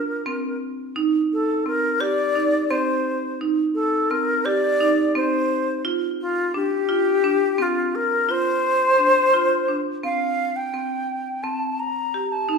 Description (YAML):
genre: progressive instrumental, progressive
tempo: 172 BPM (eighths)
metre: 7/8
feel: straight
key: C dorian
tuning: A4 = 440 Hz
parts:
  - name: wooden flute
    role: melody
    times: 0.0-12.6 s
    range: F4 to Bb5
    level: -21 LUFS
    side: left 2 dB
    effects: none
  - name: marimba with hard mallets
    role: arpeggios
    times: 0.0-12.6 s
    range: C4 to G4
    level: -24 LUFS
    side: right 3 dB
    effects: none
room: wet large studio reverb, RT60 1.4 s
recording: band playing live in one room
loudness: -19 LUFS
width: side -5 dB against mid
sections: 0.0-10.7 A section; 10.7-12.6 B section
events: none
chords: 0.0 Bbadd9/C; 1.0 Cm; 5.8 Csus4; 10.7 C7(no3)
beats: 0.26 0.61 | 0.95 1.30 1.65 2.00 2.35 2.70 3.05 | 3.40 3.75 4.10 4.45 4.80 5.15 5.50 | 5.84 6.19 6.54 6.89 7.24 7.59 7.94 | 8.29 8.64 8.99 9.34 9.69 10.04 10.38 | 10.73 11.08 11.43 11.78 12.13 12.48